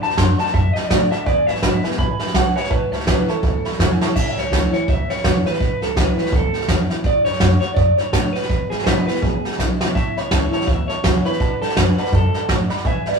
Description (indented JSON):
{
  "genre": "rockabilly",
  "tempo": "166 BPM",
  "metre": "4/4",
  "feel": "swing 59% on 8ths",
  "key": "A major",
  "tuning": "A4 = 443 Hz",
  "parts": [
    { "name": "electric guitar through a small old amp", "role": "melody", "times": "0.0-13.2 s", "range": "G#4 to C6", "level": "-22 LUFS", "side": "right 1 dB", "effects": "none" },
    { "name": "honky-tonk upright piano", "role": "accompaniment", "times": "0.0-4.1, 10.0-13.2 s", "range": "B4 to B5", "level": "-30 LUFS", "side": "right 2 dB", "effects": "none" },
    { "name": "picked steel-string acoustic guitar", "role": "accompaniment", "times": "0.0-13.2 s", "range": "E2 to F#4", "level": "-27 LUFS", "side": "left 2 dB", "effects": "none" },
    { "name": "upright bass", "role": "bass", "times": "0.0-13.2 s", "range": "E1 to A2", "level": "-23 LUFS", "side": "right 1 dB", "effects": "none" },
    { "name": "soft brush drum kit", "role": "drums", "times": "0.0-13.2 s", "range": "crash cymbal, hi-hat, kick drum, snare drum", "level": "-19 LUFS", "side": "right 1 dB", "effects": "none" }
  ],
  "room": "moderate stone room reverb, RT60 1.0 s",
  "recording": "rough rehearsal-room recording, warm saturation",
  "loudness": "-16 LUFS",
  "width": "side -5 dB against mid",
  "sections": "0.0-4.2 A section; 4.2-13.2 B section",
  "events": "clean electric guitar solo 0.0-4.2; drum fill 4.0, 9.6-10.0",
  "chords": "0.0 D; 1.3 E7; 2.7 A; 7.1 D; 8.5 E7; 10.0 A; 11.4 D"
}